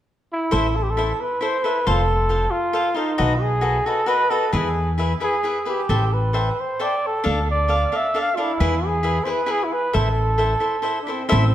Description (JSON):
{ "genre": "mexican folk, mariachi", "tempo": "134 BPM", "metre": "3/4", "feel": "straight", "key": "A minor", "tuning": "A4 = 438 Hz", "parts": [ { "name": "mellow trumpet", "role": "melody", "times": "0.3-11.5 s", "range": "C4 to F5", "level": "-22 LUFS", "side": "right 1 dB", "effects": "none" }, { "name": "cavaquinho", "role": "accompaniment", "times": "0.5-11.4 s", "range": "D4 to G5", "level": "-24 LUFS", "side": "left 1 dB", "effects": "none" }, { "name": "upright bass", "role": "bass", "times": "0.5-11.5 s", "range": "F1 to E2", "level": "-21 LUFS", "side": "equal", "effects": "none" } ], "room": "moderate recital hall reverb, RT60 1.7 s", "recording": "none", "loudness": "-18 LUFS", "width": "side -12 dB against mid", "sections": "0.5-11.3 A section", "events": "none", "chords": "0.0 N.C.; 0.5 Am; 1.9 F; 3.2 B7; 4.5 E; 5.9 Am7; 7.3 Dm; 8.6 E; 9.9 Am", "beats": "0.08 | 0.53 0.98 1.43 | 1.87 2.32 2.76 | 3.20 3.65 4.09 | 4.54 4.99 5.44 | 5.90 6.36 6.81 | 7.26 7.71 8.15 | 8.61 9.05 9.49 | 9.94 10.39 10.85 | 11.31" }